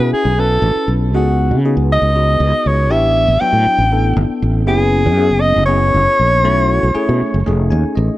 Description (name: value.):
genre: electric jazz fusion.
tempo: 237 BPM (eighths).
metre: 7/8.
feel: straight.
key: unclear.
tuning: A4 = 440 Hz.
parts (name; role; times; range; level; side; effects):
breathy soprano saxophone; melody; 0.0-7.7 s; F#4 to G5; -15 LUFS; equal; none.
bell-like tine electric piano; accompaniment; 0.0-8.2 s; F#3 to G#5; -20 LUFS; left 1 dB; phaser.
fretless electric bass; bass; 0.0-8.1 s; F1 to C#3; -15 LUFS; equal; none.
room: light reverb, small room ambience.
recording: dark, warm production.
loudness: -12 LUFS.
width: side -16 dB against mid.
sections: 0.0-8.2 A section.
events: tine electric piano fill 7.5-8.2.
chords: 0.0 B9sus4; 1.1 C#9sus4; 2.9 A9sus4; 4.7 F#9sus4; 6.5 B9sus4; 7.5 F7alt.